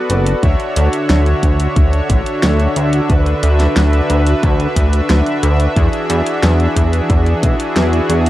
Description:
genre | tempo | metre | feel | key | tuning
synthwave | 90 BPM | 4/4 | straight | unclear | A4 = 442 Hz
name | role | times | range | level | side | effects
soft supersaw | sustained chords | 0.0-8.3 s | D3 to E5 | -17 LUFS | equal | sidechain pumping, cassette tape
chorused synth bass | bass | 0.1-8.3 s | F#1 to E2 | -13 LUFS | equal | tube saturation
pop drum kit | drums | 0.1-8.3 s | hi-hat, snare drum | -20 LUFS | equal | none
electronic kick drum | drums | 0.4-7.6 s | none | -15 LUFS | equal | none
room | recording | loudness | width
little or no reverb | home recording on cassette | -12 LUFS | side -15 dB against mid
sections
0.0-8.3 A section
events
none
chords
0.4 Dmaj7; 5.8 E7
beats
| 0.43 1.10 1.76 2.43 | 3.10 3.76 4.43 5.10 | 5.76 6.43 7.10 7.76

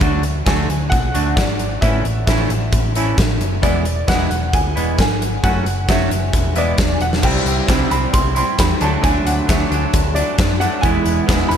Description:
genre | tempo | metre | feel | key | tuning
indie rock | 133 BPM | 4/4 | straight | D lydian | A4 = 439 Hz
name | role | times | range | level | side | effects
distorted electric guitar | riff | 0.0-11.6 s | C3 to F#4 | -21 LUFS | right 1 dB | distortion
hollow-body short-scale picked electric bass | bass | 0.0-11.6 s | E1 to F#2 | -21 LUFS | equal | none
big rock drum kit | drums | 0.0-11.6 s | crash cymbal, hi-hat, kick drum, snare drum | -18 LUFS | equal | none
dark upright piano | melody | 0.5-11.6 s | D5 to C6 | -23 LUFS | equal | diffuse ambient delay
room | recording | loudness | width
light reverb, small room ambience | none | -14 LUFS | side -8 dB against mid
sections
0.0-7.2 A section; 7.2-11.6 B section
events
none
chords
0.0 D; 1.8 A; 3.6 E7; 5.4 F#m7; 6.3 E7; 7.2 C; 8.8 Dadd9; 10.8 E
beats
| 0.01 0.47 0.92 1.37 | 1.82 2.27 2.72 3.18 | 3.63 4.08 4.53 4.98 | 5.43 5.88 6.33 6.79 | 7.24 7.69 8.14 8.59 | 9.04 9.49 9.94 10.38 | 10.83 11.28

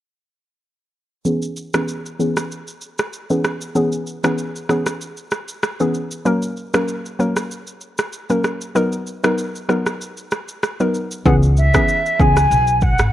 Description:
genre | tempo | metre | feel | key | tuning
afrobeats | 96 BPM | 4/4 | swing 55% on 16ths | C# dorian | A4 = 440 Hz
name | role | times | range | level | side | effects
hollow square pluck | accompaniment | 1.3-12.5 s | E3 to A#4 | -20 LUFS | equal | chorus, low-pass filter
afro-pop drum kit | drums | 1.3-13.1 s | kick drum, rim click, shaker | -22 LUFS | equal | none
mellow concert flute | melody | 11.3-13.1 s | E5 to G#5 | -17 LUFS | equal | none
upright bass | bass | 11.3-13.1 s | G#1 to C#2 | -16 LUFS | equal | none
room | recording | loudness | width
light reverb, small room ambience | worn, warbling old tape, cassette tape, warbly pitch drift | -17 LUFS | side -13 dB against mid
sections
1.3-11.3 A section; 11.3-13.1 B section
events
filter sweep on synth pluck 1.3-11.3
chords
1.3 C#m7; 6.3 F#; 8.8 Bmaj7; 11.3 C#m7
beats
| 1.26 1.88 2.51 3.13 | 3.76 4.38 5.01 5.63 | 6.26 6.88 7.51 8.13 | 8.76 9.38 10.01 10.63 | 11.26 11.88 12.51

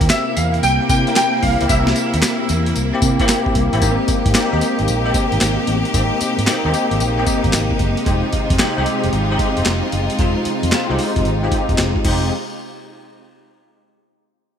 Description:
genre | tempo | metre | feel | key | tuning
R&B, new jack swing | 113 BPM | 4/4 | swing 66% on 16ths | F minor | A4 = 441 Hz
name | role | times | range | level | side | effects
bell-like tine electric piano | accompaniment | 0.0-12.3 s | Ab3 to Bb4 | -19 LUFS | left 2 dB | ensemble chorus
bright studio string section | sustained chords | 0.0-12.3 s | C3 to G4 | -25 LUFS | right 2 dB | none
vintage muted fingered electric bass | bass | 0.0-12.3 s | F1 to C3 | -20 LUFS | equal | none
boom bap sampler-style drum kit | drums | 0.0-12.2 s | crash cymbal, handclaps, hi-hat, kick drum, snare drum, tambourine | -20 LUFS | equal | none
clear grand piano | melody | 0.1-2.7 s | E5 to G5 | -19 LUFS | equal | ensemble chorus
room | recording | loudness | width
moderate plate reverb, RT60 2.6 s | bright 1980s-style digital production | -15 LUFS | side -8 dB against mid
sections
0.0-3.8 A section; 3.8-12.3 B section; 12.3-14.4 C section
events
none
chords
0.0 C7; 3.8 Abmaj7; 8.1 Fm7; 12.3 N.C.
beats
0.10 0.63 1.16 | 1.69 2.22 2.75 3.29 | 3.82 4.35 4.88 5.41 | 5.94 6.47 7.00 7.53 | 8.06 8.60 9.13 9.66 | 10.19 10.72 11.25 11.78 | 12.31

